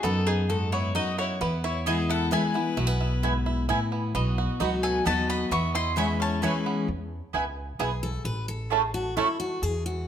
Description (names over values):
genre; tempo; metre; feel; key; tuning
bluegrass; 132 BPM; 3/4; straight; E major; A4 = 440 Hz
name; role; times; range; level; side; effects
bluegrass banjo; melody; 0.0-9.3 s; A3 to A4; -33 LUFS; right 6 dB; none
mandolin; melody; 0.0-6.6 s; G#4 to C#6; -30 LUFS; left 2 dB; none
clear fiddle; second line; 0.0-6.6 s; B3 to E5; -36 LUFS; left 5 dB; none
picked steel-string acoustic guitar; accompaniment; 0.0-10.1 s; E2 to B4; -29 LUFS; left 2 dB; none
upright bass; bass; 0.0-10.1 s; A1 to F#2; -30 LUFS; equal; none
mandolin; stabs; 1.9-9.3 s; A3 to B5; -30 LUFS; right 5 dB; none
room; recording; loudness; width
moderate large studio reverb, RT60 1.5 s; none; -24 LUFS; side -9 dB against mid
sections
0.0-6.9 A section; 6.9-10.1 B section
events
steel-string acoustic guitar solo 6.9-10.1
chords
0.0 B; 1.4 E; 4.1 B; 5.5 E6; 6.9 E; 8.3 A5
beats
| 0.05 0.50 0.96 | 1.41 1.87 2.33 | 2.78 3.24 3.69 | 4.15 4.60 5.06 | 5.51 5.97 6.43 | 6.88 7.34 7.80 | 8.25 8.71 9.17 | 9.63